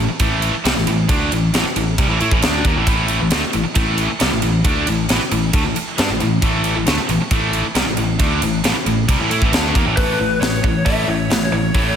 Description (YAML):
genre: hard rock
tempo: 135 BPM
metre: 4/4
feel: straight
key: unclear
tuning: A4 = 441 Hz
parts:
  - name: overdriven electric guitar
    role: riff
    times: 0.0-12.0 s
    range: A2 to E4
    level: -21 LUFS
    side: left 8 dB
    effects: none
  - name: tight distorted guitar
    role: riff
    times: 0.0-12.0 s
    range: A2 to E4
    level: -21 LUFS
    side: right 9 dB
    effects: distortion, slapback echo
  - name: modern bright picked electric bass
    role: bass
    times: 0.0-11.9 s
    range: A1 to A2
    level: -22 LUFS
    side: equal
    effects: none
  - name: tight metal drum kit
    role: drums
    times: 0.2-11.8 s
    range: hi-hat, kick drum, ride cymbal, snare drum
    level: -19 LUFS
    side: equal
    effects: none
  - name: lead guitar through a small cranked amp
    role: melody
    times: 10.0-11.9 s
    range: B4 to E5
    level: -21 LUFS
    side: left 2 dB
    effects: overdrive, slapback echo
room: moderate lush hall reverb, RT60 1.7 s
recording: big arena sound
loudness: -15 LUFS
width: side -8 dB against mid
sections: 0.0-10.0 A section; 10.0-12.0 B section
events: none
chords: 0.0 A5; 10.0 A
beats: 0.20 0.65 | 1.09 1.54 1.98 2.43 | 2.87 3.32 3.76 4.21 | 4.65 5.09 5.54 5.98 | 6.43 6.87 7.31 7.75 | 8.20 8.64 9.09 9.53 | 9.97 10.41 10.86 11.30 | 11.74